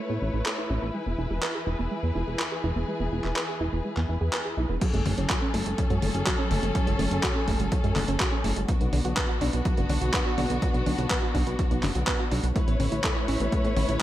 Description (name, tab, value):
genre	italo disco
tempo	124 BPM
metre	4/4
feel	straight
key	unclear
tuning	A4 = 440 Hz
part	dark symphonic string section	sustained chords	0.0-14.0 s	E3 to C#5	-31 LUFS	left 1 dB	none
part	soft round pluck	arpeggios	0.0-14.0 s	F#3 to B4	-32 LUFS	right 3 dB	chorus, digital delay
part	chorused synth bass	bass	0.1-14.0 s	E1 to A2	-28 LUFS	equal	none
part	dusty soul sampler-style drum kit	drums	0.5-14.0 s	crash cymbal, handclaps, hi-hat, toms	-31 LUFS	left 1 dB	overdrive, small room ambience, gated reverb
part	electronic kick drum	drums	4.8-13.6 s	none	-28 LUFS	equal	small room ambience
room	light reverb, digital ambience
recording	none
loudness	-24 LUFS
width	side -13 dB against mid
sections	0.0-4.8 A section; 4.8-14.0 B section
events	none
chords	0.0 Aadd9; 0.9 E; 4.8 F#madd9; 8.7 Bm; 12.6 Aadd9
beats	0.46 | 0.94 1.43 1.91 2.40 | 2.88 3.36 3.85 4.33 | 4.82 5.30 5.78 6.27 | 6.75 7.23 7.72 8.20 | 8.69 9.17 9.65 10.14 | 10.62 11.11 11.59 12.07 | 12.56 13.04 13.53 14.01